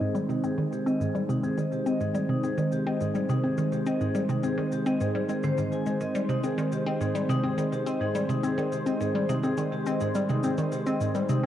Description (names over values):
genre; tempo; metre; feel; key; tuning
ambient, sequencer-driven space music; 105 BPM; 4/4; straight; Ab major; A4 = 440 Hz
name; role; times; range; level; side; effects
sweeping resonant pad; sustained chords; 0.0-11.5 s; Eb3 to C5; -29 LUFS; right 1 dB; chorus, cassette tape
vibraphone with hard mallets; arpeggios; 0.0-11.5 s; Eb4 to Ab5; -34 LUFS; left 2 dB; auto-pan, low-pass filter, cassette tape, tape echo
hollow square pluck; riff; 0.0-11.5 s; Ab2 to C4; -28 LUFS; equal; chorus, cassette tape, tape echo
shaker and percussion blips; percussion; 0.2-11.4 s; none; -48 LUFS; equal; tape echo
room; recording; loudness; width
moderate spring reverb, RT60 2.7 s; home recording on cassette; -25 LUFS; side -11 dB against mid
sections
0.0-11.5 A section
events
fade-in on drum 0.0-11.5; filter sweep on vibraphone 0.0-11.5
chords
0.0 Ab